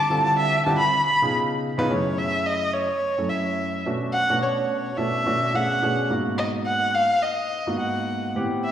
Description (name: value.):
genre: jazz.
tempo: 107 BPM.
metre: 4/4.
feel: swing 56% on 16ths.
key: F# dorian.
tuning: A4 = 440 Hz.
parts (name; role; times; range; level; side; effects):
dark violin; melody; 0.0-8.7 s; C#5 to B5; -22 LUFS; equal; slapback echo, tape echo.
warm grand piano; accompaniment; 0.1-8.7 s; F#2 to B4; -25 LUFS; right 1 dB; none.
room: moderate lush hall reverb, RT60 3.0 s.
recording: live gig heard through the venue's PA, recital hall reverb.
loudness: -21 LUFS.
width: side -10 dB against mid.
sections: 0.0-1.9 A section; 1.9-8.7 B section.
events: violin solo 0.0-1.9.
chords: 0.0 Dm11; 0.8 C#7; 1.9 F#m9; 3.9 Bm9; 6.1 G#m9.